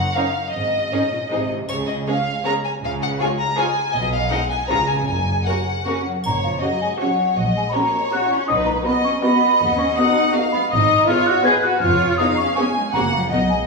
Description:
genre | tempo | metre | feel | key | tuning
cinematic, playful, whimsical film cue | 160 BPM | 3/4 | straight | Db major, F# major from 3.9 s | A4 = 440 Hz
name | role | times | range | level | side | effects
clear chamber violin section | melody | 0.0-13.4 s | Db5 to Bb5 | -24 LUFS | left 1 dB | none
rich chamber violin section | second line | 0.2-13.7 s | Ab4 to G#5 | -24 LUFS | left 1 dB | none
rich chamber viola section | accompaniment | 0.2-13.4 s | Ab3 to G#4 | -25 LUFS | right 1 dB | none
rich chamber double bass section | bass | 0.5-13.6 s | E#1 to D#2 | -27 LUFS | right 1 dB | none
warm chamber cello section | bass | 0.5-13.7 s | F#2 to G#4 | -24 LUFS | equal | none
triangle | percussion | 1.7-2.4, 6.2-7.0 s | none | -37 LUFS | right 6 dB | none
mellow hollow silver concert flute | second line | 5.9-13.6 s | E#5 to G#6 | -20 LUFS | left 1 dB | none
room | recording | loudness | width
wet recital hall reverb, RT60 1.7 s | recorded in a church or concert hall, small room ambience | -17 LUFS | side -3 dB against mid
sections
0.0-6.2 A section; 6.2-13.7 B section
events
none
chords
0.0 Ebm7; 0.5 Ab5; 1.3 Ab; 1.7 Db5; 3.9 G#m/B; 4.7 C#7; 5.1 F#; 7.4 F#/A#; 8.5 B; 9.6 B/D#; 10.7 G#m; 11.8 C#7/E#; 12.9 F#

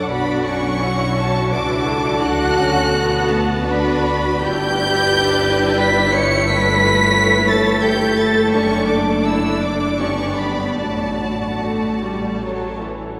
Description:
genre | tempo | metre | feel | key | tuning
classical, slow romantic movement for string orchestra | 72-89 BPM | 3/4 | rubato | D major | A4 = 440 Hz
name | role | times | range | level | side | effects
rich chamber violin section | melody | 0.0-12.8 s | A5 to C#7 | -24 LUFS | equal | none
rich chamber violin section | second line | 0.0-13.0 s | F#4 to A5 | -25 LUFS | equal | none
rich symphonic viola section | accompaniment | 0.0-13.2 s | E3 to F#4 | -24 LUFS | equal | none
dark chamber double bass section | bass | 0.0-13.0 s | F#1 to D2 | -26 LUFS | equal | none
rich chamber cello section | bass | 0.0-12.8 s | A3 to C#5 | -25 LUFS | equal | none
room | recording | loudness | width
wet cathedral reverb, RT60 5.3 s | recorded in a church or concert hall | -17 LUFS | mono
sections
0.0-13.2 A section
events
none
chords
0.1 Bm7; 2.2 Bm/D; 4.4 G6; 6.5 A7/G; 8.6 D/F#; 10.0 G; 10.8 D/A; 12.4 A

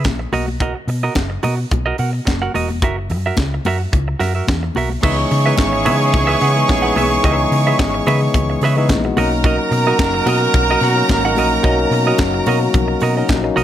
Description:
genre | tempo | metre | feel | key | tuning
disco | 109 BPM | 4/4 | straight | C# dorian | A4 = 440 Hz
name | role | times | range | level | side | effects
semi-hollow electric guitar | accompaniment | 0.0-13.6 s | F#4 to F#5 | -22 LUFS | right 5 dB | low-pass filter
hollow-body short-scale fingered electric bass | bass | 0.0-13.6 s | E1 to C#3 | -20 LUFS | equal | none
tight funk drum kit | drums | 0.0-13.6 s | crash cymbal, handclaps, hi-hat, kick drum, snare drum | -21 LUFS | equal | none
congas | percussion | 0.1-13.6 s | none | -27 LUFS | left 5 dB | none
clear studio violin section | second line | 5.0-13.3 s | A#4 to C#6 | -20 LUFS | left 1 dB | none
mellow tine electric piano | accompaniment | 5.0-13.6 s | D#3 to F#4 | -20 LUFS | left 4 dB | none
warm horn section | stabs | 5.0-13.2 s | C#4 to A#4 | -21 LUFS | right 5 dB | none
room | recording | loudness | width
light reverb, small room ambience | none | -14 LUFS | side -11 dB against mid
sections
0.0-5.0 A section; 5.0-13.6 B section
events
none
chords
0.3 Bmaj7; 2.8 F#7; 5.0 C#m7; 9.2 Bmaj7

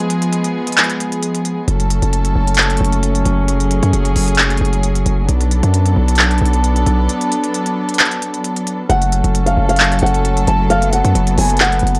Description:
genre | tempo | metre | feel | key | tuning
hip hop, trap | 133 BPM | 4/4 | half-time | F# harmonic minor | A4 = 440 Hz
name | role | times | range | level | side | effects
warm chamber string section | sustained chords | 0.0-12.0 s | E#3 to A4 | -21 LUFS | equal | none
trap drum kit | drums | 0.1-12.0 s | handclaps, hi-hat | -20 LUFS | equal | overdrive
distorted 808-style bass | bass | 1.7-12.0 s | F#1 to F#2 | -18 LUFS | equal | distortion
flamenco guitar | melody | 8.9-12.0 s | E#5 to A5 | -20 LUFS | equal | low-pass filter
room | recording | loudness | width
little or no reverb | dry, gritty hardware recording, cassette tape | -15 LUFS | mono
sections
0.0-8.9 A section; 8.9-12.0 B section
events
break 0.0-1.7, 7.1-8.9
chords
0.0 C# (rootless); 1.7 F#m; 5.3 Bm7; 8.9 F#m

